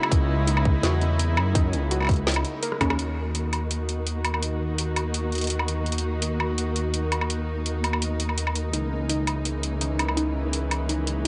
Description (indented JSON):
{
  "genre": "half-time drum and bass",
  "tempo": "167 BPM",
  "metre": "4/4",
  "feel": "half-time",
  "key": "Eb phrygian",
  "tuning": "A4 = 440 Hz",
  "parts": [
    { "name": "dark studio string section", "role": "sustained chords", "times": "0.0-11.3 s", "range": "Db3 to Gb4", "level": "-32 LUFS", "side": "equal", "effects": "sidechain pumping, low-pass filter" },
    { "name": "drum and bass drum kit", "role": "drums", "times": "0.0-11.3 s", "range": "hi-hat, rim click, snare drum, woodblock", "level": "-30 LUFS", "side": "equal", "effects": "none" },
    { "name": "flickering grainy texture", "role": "texture", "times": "0.0-11.3 s", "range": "Bb3 to Bb4", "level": "-40 LUFS", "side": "equal", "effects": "built-in reverb" },
    { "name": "dark detuned saw bass", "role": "bass", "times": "0.1-11.3 s", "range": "Db2 to Gb2", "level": "-29 LUFS", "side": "equal", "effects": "tube saturation" },
    { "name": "electronic kick drum", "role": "drums", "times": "0.1-2.9 s", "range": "none", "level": "-24 LUFS", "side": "equal", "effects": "none" },
    { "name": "warbly dusty pluck", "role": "arpeggios", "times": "0.5-3.0, 8.7-11.3 s", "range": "Db4 to Bb4", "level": "-34 LUFS", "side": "equal", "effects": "chorus, delay" }
  ],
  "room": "light reverb, digital ambience",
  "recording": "nothing above 10.4 kHz",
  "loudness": "-25 LUFS",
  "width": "mono",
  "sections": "0.0-3.0 A section; 3.0-11.3 B section",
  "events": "drop 0.0-3.0; drum fill 2.7; band accent 2.9",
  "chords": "0.0 Dbmadd9; 3.0 Ebm; 8.7 Dbmadd9"
}